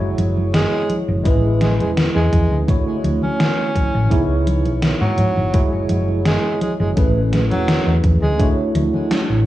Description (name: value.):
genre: vaporwave.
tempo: 84 BPM.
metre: 4/4.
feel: straight.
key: unclear.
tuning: A4 = 441 Hz.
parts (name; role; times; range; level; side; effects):
tine electric piano; accompaniment; 0.0-9.5 s; D3 to C#5; -22 LUFS; right 1 dB; medium stereo tremolo, lush chorus, analog delay.
hollow-body short-scale fingered electric bass; bass; 0.0-9.5 s; E1 to G#2; -19 LUFS; equal; none.
gated 80s digital drum machine; drums; 0.2-9.3 s; congas, hi-hat, snare drum; -22 LUFS; equal; gated reverb, gated reverb snare, overdrive.
breathy tenor saxophone; melody; 0.5-8.5 s; F#3 to C#4; -24 LUFS; right 1 dB; tape echo.
electronic kick drum; drums; 1.3-8.5 s; none; -18 LUFS; equal; overdrive.
room: light reverb.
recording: worn, warbling old tape, cassette tape, warbly pitch drift, studio reverb.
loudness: -15 LUFS.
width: side -14 dB against mid.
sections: 0.0-9.5 A section.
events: drum fill 9.1-9.5.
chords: 0.0 F#sus2; 1.3 Amaj9; 2.7 Dmaj9; 4.1 C#m9; 5.5 F#sus2; 7.0 Amaj9; 8.4 Dmaj9.